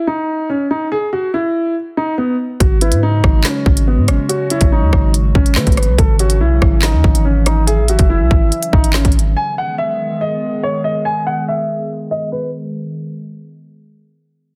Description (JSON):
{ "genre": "hip hop, drill", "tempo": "142 BPM", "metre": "4/4", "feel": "half-time", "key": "G# minor", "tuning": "A4 = 445 Hz", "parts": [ { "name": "dark grand piano", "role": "melody", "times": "0.0-12.5 s", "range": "A3 to G#5", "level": "-21 LUFS", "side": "equal", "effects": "none" }, { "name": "warbly tape-like pad", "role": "sustained chords", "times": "2.6-12.7 s", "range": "C#3 to G#4", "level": "-27 LUFS", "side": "equal", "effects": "chorus, built-in reverb" }, { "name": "long sustained 808-style bass", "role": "bass", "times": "2.6-9.4 s", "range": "F#1 to D#3", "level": "-17 LUFS", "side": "equal", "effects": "none" }, { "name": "drill drum kit", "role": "drums", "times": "2.6-9.3 s", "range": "handclaps, hi-hat, kick drum, rim click, snare drum", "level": "-16 LUFS", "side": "equal", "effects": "none" }, { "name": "soft octave-layered synth lead", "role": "second line", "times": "2.8-9.3 s", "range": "B4 to E5", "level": "-28 LUFS", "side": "equal", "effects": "chorus, tape echo" } ], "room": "light reverb", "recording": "dense, heavily limited modern master, low-pass filter", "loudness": "-15 LUFS", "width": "mono", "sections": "0.0-9.4 A section; 9.4-12.7 B section", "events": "filter sweep 9.4-12.7", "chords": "0.0 N.C.; 2.6 F#sus2/G#; 6.0 A/G# (rootless); 9.4 G#m", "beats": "0.07 0.49 | 0.91 1.34 1.76 2.18 | 2.60 3.03 3.45 3.87 | 4.29 4.72 5.14 5.56 | 5.98 6.41 6.83 7.25 | 7.67 8.10 8.52 8.94 | 9.37 9.79 10.21 10.63 | 11.05 11.48 11.90 12.32" }